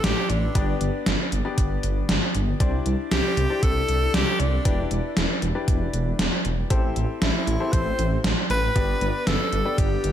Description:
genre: synthwave.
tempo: 117 BPM.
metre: 4/4.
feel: straight.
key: A minor.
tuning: A4 = 440 Hz.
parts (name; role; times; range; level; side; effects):
clear tenor saxophone; melody; 0.0-10.1 s; D4 to C5; -27 LUFS; equal; digital delay.
clear baby grand piano; stabs; 0.0-10.1 s; B3 to D5; -31 LUFS; left 5 dB; digital delay.
wide detuned saw bass; bass; 0.0-10.1 s; E1 to C2; -25 LUFS; equal; chorus.
gated 80s digital drum machine; drums; 0.0-10.1 s; hi-hat, snare drum; -26 LUFS; right 1 dB; gated reverb, gated reverb snare, overdrive.
electronic kick drum; drums; 0.6-9.9 s; none; -23 LUFS; equal; overdrive.
room: light reverb.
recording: none.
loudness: -20 LUFS.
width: side -10 dB against mid.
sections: 0.0-10.1 A section.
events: none.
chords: 0.0 Am7; 0.6 G; 2.6 Cadd9; 4.7 Em7; 6.7 Am7; 8.8 G.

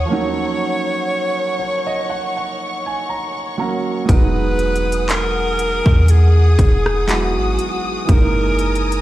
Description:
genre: contemporary R&B.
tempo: 60 BPM.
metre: 4/4.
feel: swing 54% on 16ths.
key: unclear.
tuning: A4 = 441 Hz.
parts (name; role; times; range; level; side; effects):
warm alto saxophone; melody; 0.0-9.0 s; F#4 to C#5; -22 LUFS; left 1 dB; tape echo.
warm concert grand piano; accompaniment; 0.0-9.0 s; E3 to A#5; -23 LUFS; right 5 dB; none.
warm studio string section; sustained chords; 0.0-9.0 s; G#4 to D#6; -26 LUFS; left 2 dB; sidechain pumping.
warm 808-style bass; bass; 0.0-9.0 s; E1 to E2; -16 LUFS; equal; none.
trap drum kit; drums; 4.1-9.0 s; handclaps, hi-hat, kick drum, rim click; -16 LUFS; equal; none.
room: little or no reverb.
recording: played on a big sound system in a bare room, large studio reverb.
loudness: -15 LUFS.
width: side -15 dB against mid.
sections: 0.0-4.1 A section; 4.1-9.0 B section.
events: break 0.1-4.1; grand piano fill 1.1-4.1.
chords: 0.0 D#m7; 4.1 Emaj9; 8.1 F#13.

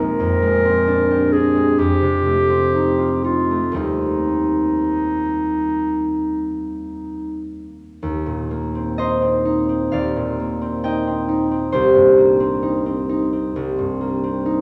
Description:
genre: classical, impressionist duo for clarinet and harp.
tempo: 55-68 BPM.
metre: 4/4.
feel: rubato.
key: Eb major.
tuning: A4 = 440 Hz.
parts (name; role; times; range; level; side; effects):
clear clarinet; melody; 0.0-7.5 s; Eb4 to Bb4; -22 LUFS; equal; none.
concert harp; accompaniment; 0.0-14.6 s; Bb1 to G5; -21 LUFS; equal; none.
room: wet recital hall reverb, RT60 1.6 s.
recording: small room ambience.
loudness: -19 LUFS.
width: mono.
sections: 0.0-8.0 A section; 8.0-14.6 B section.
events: none.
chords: 0.0 Bb13; 1.8 F9; 3.8 Eb69; 8.0 Eb6; 11.7 Cm9.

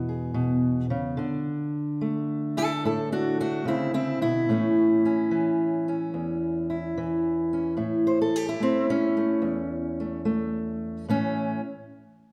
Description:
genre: acoustic country blues, solo or duo.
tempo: 73 BPM.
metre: 4/4.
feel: swing 68% on 8ths.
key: A major.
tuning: A4 = 442 Hz.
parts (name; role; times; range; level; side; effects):
fingerpicked steel-string acoustic guitar; solo; 0.0-11.6 s; E2 to C5; -26 LUFS; equal; none.
room: wet recital hall reverb, RT60 1.3 s.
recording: recorded in a church or concert hall.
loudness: -26 LUFS.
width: mono.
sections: 0.0-11.1 A section; 11.1-12.3 B section.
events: none.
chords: 0.0 E; 1.2 D5; 4.5 A.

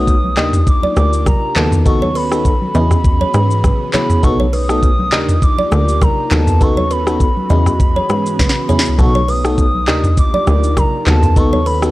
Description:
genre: afrobeats.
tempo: 101 BPM.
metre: 4/4.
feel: swing 55% on 16ths.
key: B mixolydian.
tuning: A4 = 438 Hz.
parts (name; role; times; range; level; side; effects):
hollow clarinet-like synth lead; melody; 0.0-11.8 s; A5 to D#6; -20 LUFS; equal; chorus.
FM electric piano; accompaniment; 0.0-11.9 s; A3 to A#4; -19 LUFS; left 1 dB; chorus.
airy breathy pad; sustained chords; 0.0-11.9 s; D#3 to A4; -24 LUFS; equal; chorus, sidechain pumping.
plucky analog bass; bass; 0.0-11.9 s; B1 to G#2; -16 LUFS; equal; none.
afro-pop drum kit; drums; 0.1-11.9 s; handclaps, hi-hat, kick drum, rim click, shaker, snare drum, toms; -15 LUFS; equal; none.
congas; percussion; 0.2-11.7 s; none; -25 LUFS; equal; none.
kalimba; riff; 0.4-11.8 s; A#4 to D#5; -23 LUFS; right 2 dB; none.
room: digital ambience.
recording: dry, gritty hardware recording.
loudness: -11 LUFS.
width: side -18 dB against mid.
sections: 0.0-11.9 A section.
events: drum fill 8.4-9.0.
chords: 0.4 D#maj7; 1.6 B7/D#; 2.7 E6; 4.2 B7; 5.1 D#maj7; 6.3 B7/D#; 7.5 E6; 9.0 B7; 9.9 D#maj7; 11.1 B7/D#.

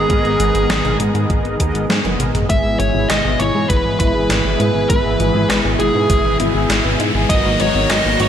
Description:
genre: synthwave.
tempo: 100 BPM.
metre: 4/4.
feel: straight.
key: unclear.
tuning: A4 = 440 Hz.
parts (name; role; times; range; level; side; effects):
fuzz lead guitar; melody; 0.0-8.3 s; G#4 to E5; -20 LUFS; equal; distortion, tape echo.
lush unison pad; sustained chords; 0.0-8.3 s; B2 to A#5; -22 LUFS; equal; chorus, sidechain pumping.
mellow synth brass; stabs; 0.0-8.3 s; B3 to G#5; -24 LUFS; equal; chorus, cassette tape, tape echo.
chorused synth bass; bass; 0.0-8.3 s; F#1 to G#2; -20 LUFS; equal; sidechain pumping.
electronic kick drum; drums; 0.1-7.4 s; none; -18 LUFS; equal; overdrive.
gated 80s digital drum machine; drums; 0.1-8.3 s; hi-hat, snare drum, toms; -21 LUFS; equal; gated reverb, gated reverb snare, high-pass filter on hats, high-pass filter on snare, high-pass filter on toms, high-pass filter on room.
mellow electric guitar; arpeggios; 2.5-8.3 s; F#3 to G#4; -26 LUFS; left 4 dB; low-pass filter, tape echo.
riser; sound effects; 4.9-8.3 s; none; -26 LUFS; left 1 dB; none.
room: moderate lush hall reverb, RT60 2.3 s.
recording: none.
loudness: -14 LUFS.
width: side -9 dB against mid.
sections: 0.0-2.5 A section; 2.5-8.3 B section.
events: drum fill 2.0-2.5; filter sweep on clean electric guitar 2.5-8.3; filter sweep on analog polysynth 2.5-8.3; riser 4.9-8.3.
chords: 0.0 G#madd9; 2.5 E/G#; 7.3 Bmaj7/G#.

